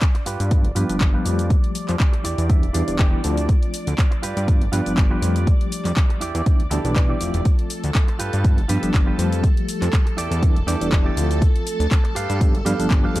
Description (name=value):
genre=filtered disco house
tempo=121 BPM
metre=4/4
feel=swing 55% on 16ths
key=unclear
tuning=A4 = 440 Hz
part: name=string machine, full ensemble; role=sustained chords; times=0.0-13.2 s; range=A4 to D6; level=-31 LUFS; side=right 1 dB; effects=ensemble chorus, sidechain pumping, low-pass filter
part: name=electronic kick drum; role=drums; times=0.0-13.0 s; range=none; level=-17 LUFS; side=equal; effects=overdrive
part: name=house drum kit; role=drums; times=0.0-13.2 s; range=handclaps, hi-hat, shaker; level=-30 LUFS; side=left 1 dB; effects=overdrive, sidechain pumping on hats, sidechain pumping on cymbals, sidechain pumping on perc
part: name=clean electric guitar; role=riff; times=0.1-13.2 s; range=E4 to A5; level=-30 LUFS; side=right 4 dB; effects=sidechain pumping, low-pass filter
part: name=fat analog bass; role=bass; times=0.3-13.2 s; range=E1 to G2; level=-23 LUFS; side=equal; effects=sidechain pumping, low-pass filter
part: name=reed electric piano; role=accompaniment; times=0.5-13.2 s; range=E3 to G4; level=-26 LUFS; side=left 1 dB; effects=fast tremolo, phaser, vintage 12-bit sampler grit, sidechain pumping, low-pass filter
room=little or no reverb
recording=dark, warm production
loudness=-17 LUFS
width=side -17 dB against mid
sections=0.0-13.2 A section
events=filter sweep 0.0-13.2; clean electric guitar fill 2.0-3.5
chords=0.3 G7; 1.5 Fadd9; 2.2 Em7; 3.5 Dm7; 4.2 G7; 5.5 Fadd9; 6.2 Em7; 7.5 Dm7; 8.2 G7; 9.4 Fadd9; 10.2 Em7; 11.4 Dm7; 12.2 G7